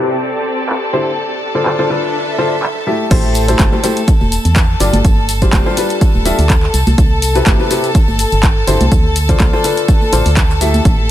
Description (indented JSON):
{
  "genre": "piano house",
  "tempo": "124 BPM",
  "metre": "4/4",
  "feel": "swing 54% on 16ths",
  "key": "unclear",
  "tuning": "A4 = 440 Hz",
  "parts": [
    { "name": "clear studio violin section", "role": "sustained chords", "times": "0.0-11.1 s", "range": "A4 to A5", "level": "-20 LUFS", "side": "left 1 dB", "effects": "sidechain pumping" },
    { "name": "clear upright piano", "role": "riff", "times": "0.0-11.1 s", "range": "C3 to E5", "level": "-17 LUFS", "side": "left 2 dB", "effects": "sidechain pumping, digital delay" },
    { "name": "clear symphonic string section", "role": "texture", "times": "0.0-3.1 s", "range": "C4 to E5", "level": "-22 LUFS", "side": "right 1 dB", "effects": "sidechain pumping" },
    { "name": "punchy analog drum machine", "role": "drums", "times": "0.1-11.0 s", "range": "crash cymbal, handclaps, hi-hat, shaker", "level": "-20 LUFS", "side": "equal", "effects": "low-pass filter on hats, low-pass filter on cymbals, low-pass filter on snare, low-pass filter on perc" },
    { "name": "organ-like FM bass", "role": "bass", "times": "3.1-11.1 s", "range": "D1 to E2", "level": "-15 LUFS", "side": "equal", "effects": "sidechain pumping" },
    { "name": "electronic kick drum", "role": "drums", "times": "3.1-11.0 s", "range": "none", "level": "-12 LUFS", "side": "equal", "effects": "none" },
    { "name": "tambourine and congas", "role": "percussion", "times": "3.1-11.0 s", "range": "none", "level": "-23 LUFS", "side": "right 2 dB", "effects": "none" }
  ],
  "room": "little or no reverb",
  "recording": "low-pass filter",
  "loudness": "-11 LUFS",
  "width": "side -12 dB against mid",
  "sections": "0.0-3.1 A section; 3.1-11.1 B section",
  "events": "filter sweep on upright piano 0.0-3.1; drop 3.1-11.1",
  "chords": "0.0 C; 1.2 Dm7; 3.1 Am7; 4.8 G7sus4; 6.7 Cmaj7; 8.9 Dm7",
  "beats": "0.21 0.69 | 1.18 1.66 2.14 2.63 | 3.11 3.59 4.08 4.56 | 5.05 5.53 6.01 6.50 | 6.98 7.46 7.95 8.43 | 8.92 9.40 9.88 10.37 | 10.85"
}